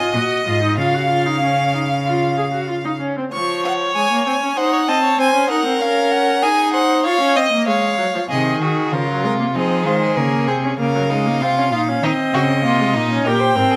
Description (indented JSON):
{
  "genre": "classical, baroque-style fugue for string quartet",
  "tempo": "96 BPM",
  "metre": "4/4",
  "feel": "straight",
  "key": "Db major",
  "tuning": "A4 = 442 Hz",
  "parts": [
    { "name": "clear violin", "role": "melody", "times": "0.0-13.8 s", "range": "Ab4 to Db6", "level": "-23 LUFS", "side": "equal", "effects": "none" },
    { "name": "clear violin", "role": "second line", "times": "0.0-13.8 s", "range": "Eb4 to F5", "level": "-23 LUFS", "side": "equal", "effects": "none" },
    { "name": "rich viola", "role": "accompaniment", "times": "0.0-13.8 s", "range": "Eb3 to Ab4", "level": "-23 LUFS", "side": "equal", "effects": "none" },
    { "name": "clear cello", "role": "bass", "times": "0.1-3.0, 8.3-13.6 s", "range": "Ab2 to F3", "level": "-24 LUFS", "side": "equal", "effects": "none" }
  ],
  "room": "moderate recital hall reverb, RT60 1.3 s",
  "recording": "close, detailed microphones",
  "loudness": "-18 LUFS",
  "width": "mono",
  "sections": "0.0-3.3 A section; 3.3-8.3 B section; 8.3-13.8 A section",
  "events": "none",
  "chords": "0.0 Ab7(no3); 0.8 Db; 3.3 Db/F; 4.6 Cdim7; 5.8 Db; 8.3 Cdim; 9.6 Fm7; 10.8 Eb7(no3); 13.3 Gm"
}